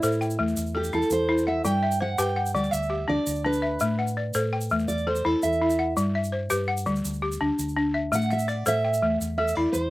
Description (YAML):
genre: west african traditional, West African string and xylophone music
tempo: 111 BPM (dotted quarters)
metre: 12/8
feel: straight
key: unclear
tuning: A4 = 440 Hz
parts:
  - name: fingerpicked steel-string acoustic guitar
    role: melody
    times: 0.0-9.9 s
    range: E4 to G5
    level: -27 LUFS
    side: right 2 dB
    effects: slapback echo
  - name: balafon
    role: arpeggios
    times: 0.0-9.9 s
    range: G3 to G5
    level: -25 LUFS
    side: left 2 dB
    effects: none
  - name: hollow-body short-scale fingered electric bass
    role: bass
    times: 0.0-9.9 s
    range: D2 to A2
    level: -31 LUFS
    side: equal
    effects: none
  - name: egg shaker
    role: percussion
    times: 0.0-9.8 s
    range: none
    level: -37 LUFS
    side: right 3 dB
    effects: none
room: little or no reverb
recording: recorded outdoors, with no room sound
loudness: -23 LUFS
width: side -18 dB against mid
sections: 0.0-9.9 A section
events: steel-string acoustic guitar solo 0.0-9.9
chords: 0.0 Am; 1.6 G; 3.8 Am; 6.0 G; 8.1 Am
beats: 0.03 0.56 1.10 | 1.64 2.18 2.72 3.26 | 3.80 4.34 4.88 5.42 | 5.96 6.50 7.04 7.58 | 8.12 8.66 9.20 9.74